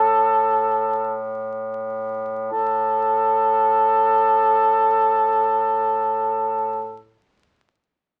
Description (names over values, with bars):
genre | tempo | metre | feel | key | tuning
caucasian folk | free time | none | none | unclear | A4 = 441 Hz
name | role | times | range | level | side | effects
mellow cor anglais | melody | 0.0-7.0 s | A4 | -20 LUFS | equal | none
clear duduk | drone | 0.0-7.1 s | A2 | -29 LUFS | equal | none
room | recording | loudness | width
moderate studio ambience, RT60 0.5 s | very old 78 rpm record, vinyl crackle | -20 LUFS | mono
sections
0.0-2.5 A section; 2.5-6.2 B section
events
slowing down 0.0-2.5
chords
none